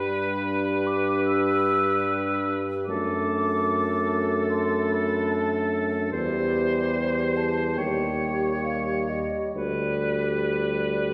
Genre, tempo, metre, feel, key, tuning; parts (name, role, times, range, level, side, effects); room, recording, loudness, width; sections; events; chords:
classical, slow romantic movement for wind quintet; 62-76 BPM; 4/4; rubato; G major; A4 = 439 Hz
mellow hollow concert flute; melody; 0.0-11.1 s; C5 to E6; -33 LUFS; equal
clear oboe; second line; 0.0-11.1 s; A4 to Db5; -33 LUFS; equal
mellow clarinet; accompaniment; 0.0-11.1 s; D4 to G4; -34 LUFS; equal
warm French horn; accompaniment; 0.0-11.1 s; G3 to A3; -32 LUFS; equal
dark bassoon; bass; 0.0-11.1 s; D2 to G2; -30 LUFS; equal
wet scoring stage reverb, RT60 1.9 s; heard from further back in the room; -25 LUFS; mono
0.0-11.1 A section
0.0 G; 2.9 D/F#; 6.1 C/E; 7.8 Eb7; 9.6 G/D